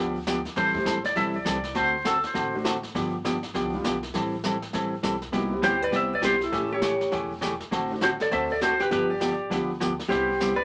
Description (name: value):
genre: country, western swing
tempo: 201 BPM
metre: 4/4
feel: swing 62% on 8ths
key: unclear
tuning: A4 = 444 Hz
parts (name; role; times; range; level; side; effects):
- vintage hollow-body jazz guitar; accompaniment; 0.0-10.5 s; C3 to A4; -30 LUFS; equal; none
- upright bass; bass; 0.0-10.6 s; E1 to D2; -44 LUFS; equal; none
- vintage brush drum kit; drums; 0.3-10.6 s; brushed snare drum, hi-hat, kick drum, snare drum; -37 LUFS; equal; none
- pedal steel guitar; melody; 0.6-2.6, 5.6-10.6 s; A4 to E5; -28 LUFS; equal; none
- clear upright piano; accompaniment; 0.7-10.3 s; G3 to G4; -36 LUFS; equal; none
- vintage hollow-body jazz guitar; second line; 5.6-10.6 s; E4 to C5; -29 LUFS; equal; none
room: wet club reverb, RT60 0.5 s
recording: none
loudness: -26 LUFS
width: mono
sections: 0.0-10.6 A section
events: none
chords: 0.0 G7; 0.6 Am7; 1.8 D7; 3.0 G7; 4.1 Am7; 5.3 Cmaj7; 6.5 A7; 7.7 D7/A; 8.9 G7; 10.1 Cmaj7